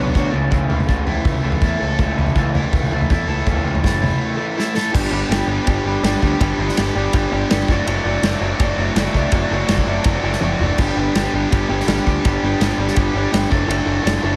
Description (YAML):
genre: indie rock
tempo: 164 BPM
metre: 4/4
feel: straight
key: unclear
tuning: A4 = 440 Hz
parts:
  - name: crunchy overdriven guitar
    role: riff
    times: 0.0-14.4 s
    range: C#3 to A4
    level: -26 LUFS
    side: equal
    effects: lush chorus, tape echo
  - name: electric guitar through a small old amp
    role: riff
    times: 0.0-14.4 s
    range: B2 to D5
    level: -24 LUFS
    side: equal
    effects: none
  - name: growling picked electric bass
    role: bass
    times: 0.0-14.3 s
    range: F#1 to E2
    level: -24 LUFS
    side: equal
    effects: overdrive
  - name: unplugged drum kit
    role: drums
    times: 0.1-14.2 s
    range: crash cymbal, kick drum, ride cymbal, snare drum, toms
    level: -23 LUFS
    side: equal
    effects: none
room: small room reverb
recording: none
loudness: -18 LUFS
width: mono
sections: 0.0-4.9 A section; 4.9-14.4 B section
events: break 4.2-4.9; drum fill 4.6-4.9, 10.4-10.8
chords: 0.3 A/C#; 4.9 G; 7.7 Dadd9/F#; 10.8 G; 13.5 Dadd9/F#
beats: 0.16 | 0.53 0.89 1.26 1.63 | 2.00 2.36 2.73 3.10 | 3.47 3.83 4.20 4.57 | 4.93 5.30 5.67 6.03 | 6.40 6.76 7.13 7.50 | 7.86 8.23 8.59 8.96 | 9.32 9.69 10.05 10.42 | 10.78 11.15 11.51 11.88 | 12.24 12.60 12.97 13.33 | 13.70 14.06